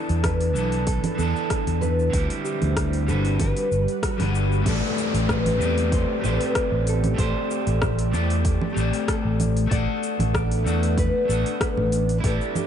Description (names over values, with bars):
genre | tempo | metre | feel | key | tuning
sunset chillout | 95 BPM | 4/4 | swing 53% on 16ths | A dorian | A4 = 439 Hz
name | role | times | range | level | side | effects
nylon-string guitar | melody | 0.0-12.7 s | E4 to D5 | -29 LUFS | left 1 dB | analog delay
electric guitar at the edge of break-up | accompaniment | 0.0-12.7 s | D3 to F#5 | -28 LUFS | moving between left 8 dB and right 6 dB | auto-pan, tape echo
lush unison pad | sustained chords | 0.0-12.7 s | D3 to B4 | -32 LUFS | equal | chorus, phaser
fingered electric bass | bass | 0.1-12.4 s | G1 to E2 | -23 LUFS | equal | tube saturation
deep house drum kit | drums | 0.1-12.7 s | congas, crash cymbal, hi-hat, rim click, shaker | -30 LUFS | right 1 dB | overdrive
electronic kick drum | drums | 0.2-12.4 s | none | -27 LUFS | equal | overdrive
downlifter | sound effects | 4.7-9.7 s | none | -33 LUFS | equal | none
room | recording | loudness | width
light reverb | echo-heavy mix, nothing above 10.9 kHz | -20 LUFS | side -9 dB against mid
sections
0.0-4.7 A section; 4.7-12.7 B section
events
band accent 4.0-4.3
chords
0.0 E7sus4; 2.1 D9sus4; 3.4 Gmaj7; 4.7 Am11; 9.7 Bm7/A